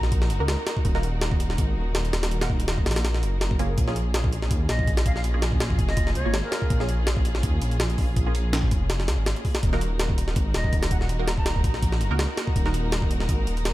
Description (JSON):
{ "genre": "drum and bass, jungle", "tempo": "164 BPM", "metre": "4/4", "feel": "swing 54% on 16ths", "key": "Eb minor", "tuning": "A4 = 439 Hz", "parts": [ { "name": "breathy silver concert flute", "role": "melody", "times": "0.0, 4.7-6.8, 10.5-11.7 s", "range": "Bb4 to Bb5", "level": "-35 LUFS", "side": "equal", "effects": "vintage 12-bit sampler grit, dub echo" }, { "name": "warm symphonic string section", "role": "sustained chords", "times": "0.0-13.7 s", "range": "Bb3 to Bb4", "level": "-34 LUFS", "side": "equal", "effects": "none" }, { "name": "dark detuned saw bass", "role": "bass", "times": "0.0-13.7 s", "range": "Eb1 to Eb2", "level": "-25 LUFS", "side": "equal", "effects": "tube saturation" }, { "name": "jungle sampler-style drum kit", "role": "drums", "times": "0.0-13.7 s", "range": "hi-hat, kick drum, snare drum", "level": "-25 LUFS", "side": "equal", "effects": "none" }, { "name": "filtered dub chord stab", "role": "stabs", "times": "0.4-12.7 s", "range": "Bb3 to Bb4", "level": "-34 LUFS", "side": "right 2 dB", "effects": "phaser, analog chorus, dub echo" } ], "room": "little or no reverb", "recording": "echo-heavy mix", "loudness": "-22 LUFS", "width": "side -16 dB against mid", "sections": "0.0-13.7 A section", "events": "none", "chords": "0.0 Ebm; 3.8 Bbm7; 9.6 Ebm" }